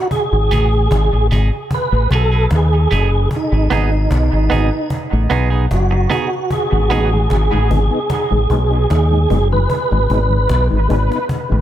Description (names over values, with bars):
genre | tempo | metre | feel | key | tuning
dub reggae | 75 BPM | 4/4 | straight | G# phrygian | A4 = 441 Hz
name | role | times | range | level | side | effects
mellow tonewheel organ | melody | 0.0-10.7 s | D#4 to B4 | -19 LUFS | right 2 dB | chorus vibrato, fast rotary speaker, dub echo
cajon | drums | 0.1-11.6 s | none | -24 LUFS | equal | none
mellow tonewheel organ | accompaniment | 0.3-0.4, 6.7-11.6 s | G#2 to D#4 | -23 LUFS | left 4 dB | chorus vibrato, slow rotary speaker, high-pass filter, dub echo
deep dub fingered electric bass | bass | 0.3-11.6 s | F#1 to D#2 | -14 LUFS | equal | none
semi-hollow electric guitar | accompaniment | 0.5-7.1 s | B3 to G#4 | -23 LUFS | right 5 dB | high-pass filter, dub echo
room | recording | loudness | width
little or no reverb | echo-heavy mix | -13 LUFS | side -12 dB against mid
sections
0.1-11.6 A section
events
none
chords
0.1 G#m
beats
| 0.11 0.91 1.71 2.51 | 3.31 4.11 4.91 5.71 | 6.51 7.31 8.11 8.90 | 9.70 10.50 11.30